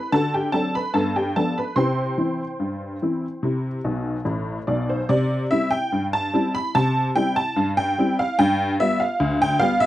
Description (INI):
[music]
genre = ragtime piano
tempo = 73 BPM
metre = 2/4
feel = straight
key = C major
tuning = A4 = 440 Hz
[part]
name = honky-tonk upright piano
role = solo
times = 0.0-9.9 s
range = A1 to C6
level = -20 LUFS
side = equal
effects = none
[sound]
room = moderate studio reverb, RT60 0.5 s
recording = dry, close 1970s-style studio recording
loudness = -20 LUFS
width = side -14 dB against mid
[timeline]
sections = 0.0-5.1 A section; 5.1-9.9 B section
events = honky-tonk piano fill 3.8-5.1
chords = 0.1 D7; 0.9 G7; 1.8 C; 8.4 G7